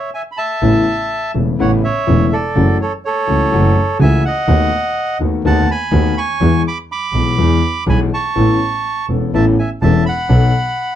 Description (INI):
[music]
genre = tango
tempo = 124 BPM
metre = 4/4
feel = rubato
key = A major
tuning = A4 = 440 Hz
[part]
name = bandoneon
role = melody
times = 0.0-11.0 s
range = A4 to D6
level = -18 LUFS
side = right 2 dB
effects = none
[part]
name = warm concert grand piano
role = accompaniment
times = 0.6-10.5 s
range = E1 to A4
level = -16 LUFS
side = left 4 dB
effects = none
[part]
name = rich double bass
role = bass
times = 0.6-10.5 s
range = E1 to E2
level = -16 LUFS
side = right 2 dB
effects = none
[sound]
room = moderate club reverb, RT60 0.5 s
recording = dark, warm production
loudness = -13 LUFS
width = side -11 dB against mid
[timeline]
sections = 0.6-11.0 A section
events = none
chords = 0.0 A5; 0.6 Aadd9; 2.6 F#m7; 4.5 B7/D#; 6.4 E; 8.4 Aadd9; 10.3 B7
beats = 0.13 | 0.62 1.11 1.60 2.08 | 2.56 3.05 3.53 4.01 | 4.49 4.97 5.45 5.93 | 6.41 6.90 7.38 7.87 | 8.36 8.84 9.33 9.81 | 10.30 10.78